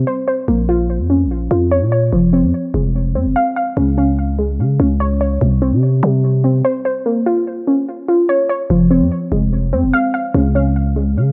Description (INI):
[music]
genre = hip hop, drill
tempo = 146 BPM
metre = 4/4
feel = half-time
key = F minor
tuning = A4 = 440 Hz
[part]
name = warbly dusty pluck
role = arpeggios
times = 0.0-11.3 s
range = C3 to F5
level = -18 LUFS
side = equal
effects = chorus, delay
[part]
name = growling 808-style bass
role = bass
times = 0.0-11.3 s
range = F1 to Db3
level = -18 LUFS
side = equal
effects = none
[sound]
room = light reverb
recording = none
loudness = -16 LUFS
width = mono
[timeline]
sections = 0.0-8.7 A section; 8.7-11.3 B section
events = none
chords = 0.5 Bbm; 2.1 Fm; 3.8 Db5; 5.4 C5; 7.1 Bbm; 8.7 Fm; 10.3 Db5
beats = 0.07 | 0.48 0.89 1.30 1.72 | 2.13 2.54 2.95 3.36 | 3.77 4.18 4.59 5.00 | 5.41 5.83 6.24 6.65 | 7.06 7.47 7.88 8.29 | 8.70 9.11 9.52 9.93 | 10.35 10.76 11.17